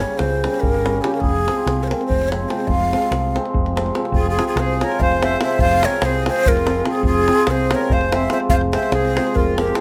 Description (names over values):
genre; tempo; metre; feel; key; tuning
balkan folk, Balkan wedding band; 288 BPM (eighths); 7/8; straight; F harmonic minor; A4 = 440 Hz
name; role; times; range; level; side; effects
breathy ney; melody; 0.0-9.8 s; G4 to F5; -23 LUFS; equal; none
hammered dulcimer; accompaniment; 0.0-9.8 s; C3 to Db4; -24 LUFS; equal; none
woody fretless electric bass; bass; 0.0-9.7 s; F1 to Db2; -26 LUFS; equal; none
davul; percussion; 0.2-9.8 s; none; -25 LUFS; equal; none
accordion; second line; 4.2-9.8 s; F4 to C5; -28 LUFS; equal; none
room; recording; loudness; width
moderate studio reverb, RT60 0.5 s; none; -18 LUFS; mono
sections
0.0-4.1 A section; 4.1-9.8 A section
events
none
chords
0.0 Gdim; 1.2 Fm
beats
0.18 0.39 0.60 0.81 1.01 | 1.22 1.43 1.64 1.85 2.06 2.26 2.47 | 2.68 2.89 3.10 3.31 3.52 3.72 3.93 | 4.14 4.35 4.56 4.76 4.97 5.18 5.39 | 5.60 5.80 6.01 6.22 6.43 6.63 6.84 | 7.05 7.25 7.46 7.67 7.88 8.08 8.29 | 8.49 8.70 8.91 9.11 9.32 9.53 9.73